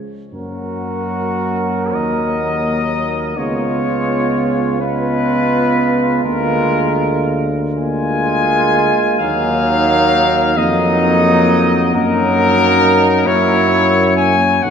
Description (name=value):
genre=classical, hymn-like piece for brass band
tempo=36-46 BPM (dotted quarters)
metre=6/8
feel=rubato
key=F# major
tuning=A4 = 440 Hz
part: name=warm cornet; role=melody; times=0.3-14.7 s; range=F#4 to Ab5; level=-17 LUFS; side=left 4 dB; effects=none
part: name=warm flugelhorn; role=second line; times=0.3-14.7 s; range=Eb4 to A#4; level=-21 LUFS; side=right 5 dB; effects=none
part: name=brilliant trombone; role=accompaniment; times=0.3-14.7 s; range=F#3 to G#3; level=-22 LUFS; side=right 2 dB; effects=none
part: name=mellow euphonium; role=accompaniment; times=0.3-14.7 s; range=A#3 to B3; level=-21 LUFS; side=left 1 dB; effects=none
part: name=warm tuba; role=bass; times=0.3-14.7 s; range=B1 to Gb2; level=-20 LUFS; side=equal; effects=none
room=wet church reverb, RT60 3.1 s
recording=none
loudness=-13 LUFS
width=side -7 dB against mid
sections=0.3-14.7 A section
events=none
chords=0.3 F#; 3.4 C#7; 6.2 A#7/D; 9.2 D#m; 12.0 Ebm/Gb